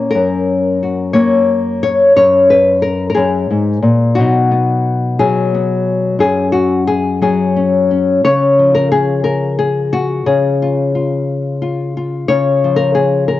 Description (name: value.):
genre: folk, solo fingerstyle acoustic guitar.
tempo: 59 BPM (dotted quarters).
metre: 6/8.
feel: straight.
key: unclear.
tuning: A4 = 440 Hz.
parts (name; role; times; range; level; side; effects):
nylon-string guitar; solo; 0.0-13.4 s; F#2 to C#5; -11 LUFS; left 2 dB; cassette tape.
room: wet spring reverb, RT60 1.7 s, small room ambience.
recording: home recording on cassette, nothing above 7.6 kHz.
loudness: -11 LUFS.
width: side -14 dB against mid.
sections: 0.0-8.2 A section; 8.2-13.4 B section.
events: none.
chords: 0.1 F#add9; 4.2 B; 6.2 F#sus2; 8.2 C#.